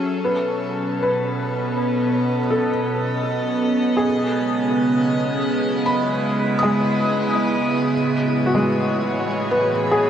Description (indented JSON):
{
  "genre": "ambient",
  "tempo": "free time",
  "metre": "none",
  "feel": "none",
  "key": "unclear",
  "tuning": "A4 = 440 Hz",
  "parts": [
    { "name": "evolving wavetable pad", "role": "sustained chords", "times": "0.0-10.1 s", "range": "A2 to E5", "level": "-20 LUFS", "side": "right 1 dB", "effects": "phaser, built-in reverb" },
    { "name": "organ-like drone", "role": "drone", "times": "1.5-10.1 s", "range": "F#3 to F#4", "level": "-38 LUFS", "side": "left 1 dB", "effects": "none" },
    { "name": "felt-muted upright piano", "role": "arpeggios", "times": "0.2-10.1 s", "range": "G#3 to D#6", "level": "-22 LUFS", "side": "equal", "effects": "tape echo" }
  ],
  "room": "wet shimmer reverb, RT60 8.7 s",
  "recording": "worn, warbling old tape, cassette tape, warbly pitch drift",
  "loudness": "-18 LUFS",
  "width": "side -9 dB against mid",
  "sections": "0.1-10.1 A section",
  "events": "none",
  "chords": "0.1 B7; 4.0 C#m7; 7.9 Amaj7"
}